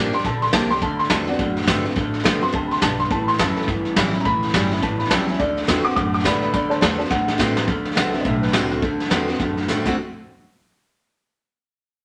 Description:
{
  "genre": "rockabilly",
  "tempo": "210 BPM",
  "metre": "4/4",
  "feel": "swing 61% on 8ths",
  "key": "D mixolydian",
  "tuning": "A4 = 440 Hz",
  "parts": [
    { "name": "picked steel-string acoustic guitar", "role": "accompaniment", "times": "0.0-10.0 s", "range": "E2 to G4", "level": "-27 LUFS", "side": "equal", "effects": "none" },
    { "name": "upright bass", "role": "bass", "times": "0.0-10.0 s", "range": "E1 to A2", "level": "-32 LUFS", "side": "equal", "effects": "none" },
    { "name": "dark upright piano", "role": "melody", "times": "0.1-10.0 s", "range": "F#4 to D6", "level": "-27 LUFS", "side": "equal", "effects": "none" },
    { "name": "vintage brush drum kit", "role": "drums", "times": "0.1-9.9 s", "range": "crash cymbal, hi-hat, kick drum, snare drum", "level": "-25 LUFS", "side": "equal", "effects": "none" },
    { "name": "electric guitar through a small old amp", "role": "riff", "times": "0.8-10.0 s", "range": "A2 to F#4", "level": "-28 LUFS", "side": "equal", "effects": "none" }
  ],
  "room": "moderate studio reverb, RT60 0.9 s",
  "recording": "none",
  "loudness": "-20 LUFS",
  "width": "mono",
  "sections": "0.0-7.7 A section; 7.7-10.0 B section; 10.0-11.1 C section",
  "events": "drum fill 7.1-7.7, 9.7",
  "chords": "0.0 Gm7; 0.8 D7; 3.1 A7; 5.4 D7; 10.0 N.C."
}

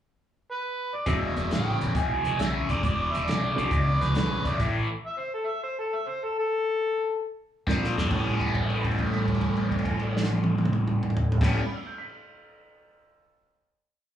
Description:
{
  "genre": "electric blues shuffle",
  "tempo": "137 BPM",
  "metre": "4/4",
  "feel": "swing 68% on 8ths",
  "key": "A mixolydian",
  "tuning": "A4 = 443 Hz",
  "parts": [
    { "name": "overdriven harmonica", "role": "melody", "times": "0.5-7.2 s", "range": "A4 to G#5", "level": "-29 LUFS", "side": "equal", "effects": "slapback echo" },
    { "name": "warm upright piano", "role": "accompaniment", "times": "1.1-3.7, 7.7-12.0 s", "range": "A2 to B6", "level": "-35 LUFS", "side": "right 6 dB", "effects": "slapback echo" },
    { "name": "cranked stack guitar", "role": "riff", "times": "1.1-4.9, 7.7-11.6 s", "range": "E2 to C#4", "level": "-27 LUFS", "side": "left 2 dB", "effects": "overdrive, phaser, slapback echo" },
    { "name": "upright bass", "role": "bass", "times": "1.1-4.8, 7.7-11.6 s", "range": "E1 to F2", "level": "-29 LUFS", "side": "right 1 dB", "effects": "none" },
    { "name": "warm soul drum kit", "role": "drums", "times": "1.1-4.7, 7.7-11.5 s", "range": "crash cymbal, hi-hat, kick drum, snare drum, toms", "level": "-29 LUFS", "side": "right 1 dB", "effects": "none" }
  ],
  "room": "light reverb, small room ambience",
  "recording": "live gig heard through the venue's PA, club reverb",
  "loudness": "-24 LUFS",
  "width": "side -10 dB against mid",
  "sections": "0.0-1.1 pickup bar; 1.1-8.1 head; 8.1-11.6 final chord",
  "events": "stop 4.6-7.7; drum fill 7.7-8.1; held note 8.1-11.3",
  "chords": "0.0 N.C.; 1.1 E7; 4.6 A5; 7.7 Bbadd9; 8.1 A9"
}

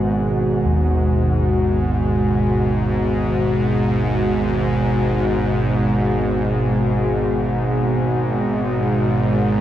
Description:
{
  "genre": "dark ambient drone",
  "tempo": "free time",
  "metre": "none",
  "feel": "none",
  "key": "unclear",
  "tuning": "A4 = 440 Hz",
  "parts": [
    { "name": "sweeping resonant pad", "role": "sustained chords", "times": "0.0-9.6 s", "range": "B2 to F#4", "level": "-19 LUFS", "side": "right 1 dB", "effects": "chorus, shimmer reverb" },
    { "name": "gamelan-type bossed gongs", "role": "arpeggios", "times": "0.0-6.8 s", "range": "D#2 to D#3", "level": "-25 LUFS", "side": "equal", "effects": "none" },
    { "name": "bowed-like drone", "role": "drone", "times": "0.0-9.6 s", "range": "G#1 to G#2", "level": "-21 LUFS", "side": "equal", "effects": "built-in reverb" }
  ],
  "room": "moderate spring reverb, RT60 2.8 s",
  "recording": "echo-heavy mix, cassette tape",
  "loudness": "-16 LUFS",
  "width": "side -12 dB against mid",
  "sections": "0.0-9.6 A section",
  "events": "none",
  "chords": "0.0 G#m7"
}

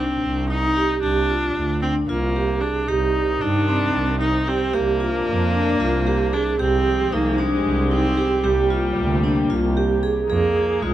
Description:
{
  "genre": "contemporary instrumental, chamber music in an uneven meter",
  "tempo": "227 BPM (eighths)",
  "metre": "7/8",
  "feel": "straight",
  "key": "C minor",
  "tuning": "A4 = 441 Hz",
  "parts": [
    { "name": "clear viola", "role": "second line", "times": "0.0-10.9 s", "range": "G3 to Eb4", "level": "-24 LUFS", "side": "equal", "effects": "none" },
    { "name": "vibraphone with medium hard mallets", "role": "arpeggios", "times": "0.0-10.9 s", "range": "C4 to Ab4", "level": "-22 LUFS", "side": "right 2 dB", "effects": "none" },
    { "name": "rich double bass", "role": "bass", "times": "0.0-10.9 s", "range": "C2 to G2", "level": "-23 LUFS", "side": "right 2 dB", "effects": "none" },
    { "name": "dark studio string section", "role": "sustained chords", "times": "2.9-10.9 s", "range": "C3 to Ab4", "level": "-27 LUFS", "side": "left 4 dB", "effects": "none" }
  ],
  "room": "light reverb",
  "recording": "close, detailed microphones",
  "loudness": "-18 LUFS",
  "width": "side -12 dB against mid",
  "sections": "0.0-10.3 A section",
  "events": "none",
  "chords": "0.0 Cmadd9; 1.0 Gm/C; 2.9 Cm; 4.7 Bb/C; 6.6 Fmadd9/C; 8.4 Gm/C; 10.3 Fm7"
}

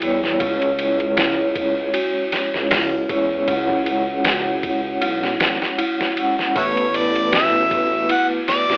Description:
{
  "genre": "trip hop",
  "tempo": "78 BPM",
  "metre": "4/4",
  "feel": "swing 56% on 16ths",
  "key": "unclear",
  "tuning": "A4 = 441 Hz",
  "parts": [
    { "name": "vibraphone with medium hard mallets", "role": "accompaniment", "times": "0.0-8.8 s", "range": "G3 to F#5", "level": "-21 LUFS", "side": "equal", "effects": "tremolo, tape echo" },
    { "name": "dark detuned synth bell", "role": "arpeggios", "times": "0.0-8.8 s", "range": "E4 to F#4", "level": "-26 LUFS", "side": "equal", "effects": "chorus, tape echo" },
    { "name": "dark detuned saw bass", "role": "bass", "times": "0.0-8.8 s", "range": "G#1 to E2", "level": "-27 LUFS", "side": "equal", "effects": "tube saturation" },
    { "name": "trip hop sampler-style drum kit", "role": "drums", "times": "0.0-8.8 s", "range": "hi-hat, kick drum, ride cymbal, snare drum", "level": "-22 LUFS", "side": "equal", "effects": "cassette tape" },
    { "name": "warm harmonica", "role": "melody", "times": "6.6-8.8 s", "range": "E4 to F#5", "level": "-18 LUFS", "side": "equal", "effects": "cassette tape" }
  ],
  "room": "light reverb",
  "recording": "home recording on cassette, telephone sound",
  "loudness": "-17 LUFS",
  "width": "side -38 dB against mid",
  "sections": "0.0-8.8 A section",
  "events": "none",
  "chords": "0.4 C#m; 6.6 Asus2"
}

